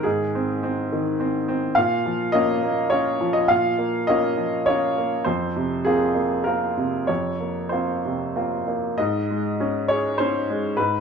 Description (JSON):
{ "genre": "neoclassical minimalist piano", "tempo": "94-106 BPM", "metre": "3/4", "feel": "rubato", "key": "unclear", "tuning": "A4 = 440 Hz", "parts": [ { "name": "clear upright piano", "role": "solo", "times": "0.0-11.0 s", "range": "F2 to F5", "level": "-20 LUFS", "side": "equal", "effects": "none" } ], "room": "moderate large studio reverb, RT60 1.0 s", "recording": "band playing live in one room", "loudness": "-20 LUFS", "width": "side -6 dB against mid", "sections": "0.0-9.0 A section; 9.0-11.0 B section", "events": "none", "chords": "0.0 Ab; 1.8 Bbm; 5.3 Fsus4; 9.0 Absus4" }